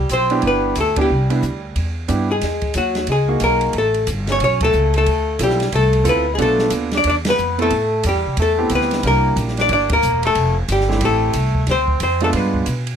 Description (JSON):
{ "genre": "jazz, small-group swing and bop", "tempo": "181 BPM", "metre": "4/4", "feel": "swing 62% on 8ths", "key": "C major", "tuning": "A4 = 438 Hz", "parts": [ { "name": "archtop guitar, miked and amplified", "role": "melody", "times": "0.0-12.9 s", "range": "F#4 to D5", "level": "-18 LUFS", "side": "left 3 dB", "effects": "none" }, { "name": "mellow tenor saxophone", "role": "second line", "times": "0.0-12.9 s", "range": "F#3 to D4", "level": "-25 LUFS", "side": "right 4 dB", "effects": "none" }, { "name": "upright bass", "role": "bass", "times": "0.0-13.0 s", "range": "E1 to B2", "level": "-20 LUFS", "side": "equal", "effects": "none" }, { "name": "open jazz drum kit", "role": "drums", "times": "0.1-12.9 s", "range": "hi-hat, kick drum, ride cymbal, snare drum", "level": "-26 LUFS", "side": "right 1 dB", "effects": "none" }, { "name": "clear baby grand piano", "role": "accompaniment", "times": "0.3-12.6 s", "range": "Ab3 to A4", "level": "-22 LUFS", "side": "right 4 dB", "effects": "none" } ], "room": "light reverb", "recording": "close, detailed microphones", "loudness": "-15 LUFS", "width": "side -8 dB against mid", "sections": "0.0-2.4 A section; 2.4-13.0 B section", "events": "band accent 0.9, 4.6, 7.2, 9.9", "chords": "0.0 Cmaj9; 2.4 Emaj9#11; 3.7 A7; 5.1 Dm9; 6.4 Bm7b5; 7.1 E5; 7.7 Am7; 9.0 C9; 10.4 Fmaj9; 11.7 Dm7; 12.3 G7b9" }